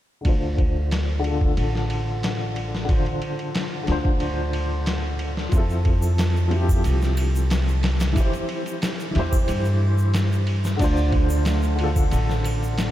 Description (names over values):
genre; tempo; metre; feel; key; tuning
trip hop; 91 BPM; 4/4; straight; D minor; A4 = 441 Hz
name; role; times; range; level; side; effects
dark upright piano; accompaniment; 0.2-12.9 s; D3 to C5; -26 LUFS; left 1 dB; tremolo, low-pass filter, tape echo
trip hop sampler-style drum kit; drums; 0.2-12.9 s; crash cymbal, kick drum, ride cymbal, snare drum; -25 LUFS; equal; none
upright bass; bass; 0.3-12.9 s; A1 to G2; -22 LUFS; equal; tube saturation
egg shaker and triangle; percussion; 5.5-12.9 s; none; -43 LUFS; right 2 dB; none
flamenco guitar; arpeggios; 10.8-12.9 s; D3 to D4; -30 LUFS; right 6 dB; tape echo
room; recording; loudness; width
light reverb, small room ambience; none; -20 LUFS; side -13 dB against mid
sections
0.3-10.8 A section; 10.8-12.9 B section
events
filter sweep on upright piano 0.3-10.8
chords
0.3 Dm7; 5.5 Fmaj7; 8.2 C/E; 10.8 Dm7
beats
| 0.25 0.91 1.57 2.23 | 2.89 3.55 4.21 4.87 | 5.53 6.19 6.85 7.51 | 8.16 8.82 9.48 10.14 | 10.80 11.46 12.12 12.78